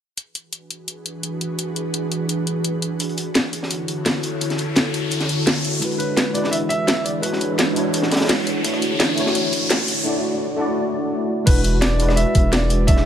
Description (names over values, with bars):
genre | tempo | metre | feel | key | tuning
liquid drum and bass | 170 BPM | 4/4 | straight | unclear | A4 = 440 Hz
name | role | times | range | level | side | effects
ethereal airy pad | sustained chords | 1.0-13.1 s | D3 to F#5 | -26 LUFS | equal | ensemble chorus, built-in reverb, sidechain pumping
drum and bass drum kit | drums | 0.2-13.0 s | crash cymbal, hi-hat, rim click, snare drum | -23 LUFS | equal | high-pass filter on hats, high-pass filter on snare, high-pass filter on cymbals, high-pass filter on room
crunchy breakbeat drum kit | drums | 3.0-13.1 s | hi-hat, snare drum | -26 LUFS | equal | high-pass filter on hats, high-pass filter on snare, high-pass filter on room
riser | sound effects | 4.0-10.1 s | none | -27 LUFS | left 1 dB | none
tine electric piano | accompaniment | 5.8-13.1 s | G#3 to D5 | -22 LUFS | equal | ensemble chorus, tape echo
electronic kick drum | drums | 5.8-13.0 s | none | -17 LUFS | equal | high-pass filter on kick, high-pass filter on room
warm grand piano | melody | 6.0-7.9, 11.5-13.1 s | B4 to E5 | -25 LUFS | equal | tape echo
saturated sub bass | bass | 11.5-13.1 s | E1 | -19 LUFS | equal | none
room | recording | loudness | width
moderate lush hall reverb, RT60 1.9 s | lossy compression artefacts | -18 LUFS | side -9 dB against mid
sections
0.2-5.8 A section; 5.8-11.5 B section; 11.5-13.1 C section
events
riser 4.0-5.8, 5.8-10.1; build-up 5.8-11.5; break 10.1-11.5; drop 11.5-13.1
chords
0.2 E7; 3.0 Dmaj9; 5.8 E7; 8.6 Dmaj9; 11.5 E7